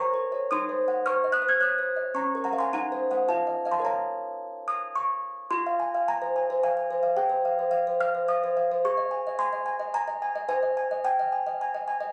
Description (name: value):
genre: classical, lullaby for music box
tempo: 108 BPM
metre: 3/4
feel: straight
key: Bb minor, F minor from 5.5 s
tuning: A4 = 437 Hz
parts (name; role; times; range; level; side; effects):
- music box; solo; 0.0-12.1 s; Db4 to Ab6; -27 LUFS; equal; none
room: light reverb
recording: recorded on a phone in the room, club reverb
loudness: -27 LUFS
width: mono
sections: 0.0-5.5 A section; 5.5-12.1 B section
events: none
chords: 0.0 Gb; 0.5 Cdim/Eb; 2.2 Bbm/Db; 2.7 Cdim/Eb; 3.3 F7; 3.8 Bbm; 5.5 Fm; 7.2 Fm/Ab; 8.8 Ab; 10.5 Ab/C